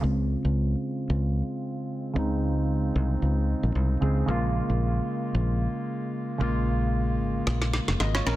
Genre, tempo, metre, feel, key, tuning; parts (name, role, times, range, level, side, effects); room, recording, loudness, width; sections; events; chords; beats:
afrobeats; 113 BPM; 4/4; swing 55% on 16ths; Db major; A4 = 440 Hz
soft electric-piano-like synth keys; accompaniment; 0.0-8.4 s; Db3 to Eb5; -28 LUFS; right 1 dB; chorus, low-pass filter
fingered electric bass; bass; 0.0-8.4 s; F1 to Db2; -25 LUFS; equal
electronic snare drum; drums; 7.5-8.4 s; -29 LUFS; equal
digital ambience; dense, heavily limited modern master; -24 LUFS; side -16 dB against mid
0.0-8.4 A section
filter sweep on synth keys 0.0-8.4; drum fill 7.5-8.4
0.0 Dbmaj7; 4.3 Bbm7
| 0.04 0.57 1.10 1.63 | 2.16 2.69 3.22 3.75 | 4.28 4.81 5.34 5.88 | 6.41 6.94 7.47 8.00